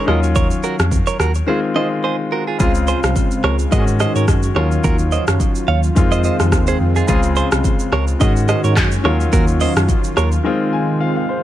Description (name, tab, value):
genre	afrobeats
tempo	107 BPM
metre	4/4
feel	swing 55% on 16ths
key	Db major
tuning	A4 = 440 Hz
part	warm grand piano	accompaniment	0.0-11.4 s	Db3 to Ab5	-21 LUFS	left 4 dB	none
part	direct-recorded clean electric guitar	riff	0.0-10.3 s	F4 to F5	-22 LUFS	right 6 dB	ping-pong delay
part	mellow tine electric piano	bass	0.1-10.4 s	C2 to Ab2	-18 LUFS	equal	none
part	deep house drum kit	drums	0.1-10.4 s	handclaps, hi-hat, kick drum, rim click, shaker	-18 LUFS	equal	vintage 12-bit sampler grit
part	warm analog pad	sustained chords	2.9-11.4 s	Db3 to Gb4	-23 LUFS	right 1 dB	chorus
room	digital ambience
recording	none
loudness	-14 LUFS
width	side -13 dB against mid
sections	0.0-2.6 A section; 2.6-11.4 B section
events	break 1.5-2.6, 10.4-11.4; grand piano fill 10.4-11.4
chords	0.1 Ebm9; 1.5 Fm7; 2.6 Dbmaj7; 3.7 Ab7sus4; 4.6 Ebm9; 6.0 Fm7; 7.1 Dbmaj7; 8.2 Ab7sus4; 9.0 Ebm9; 10.4 Fm7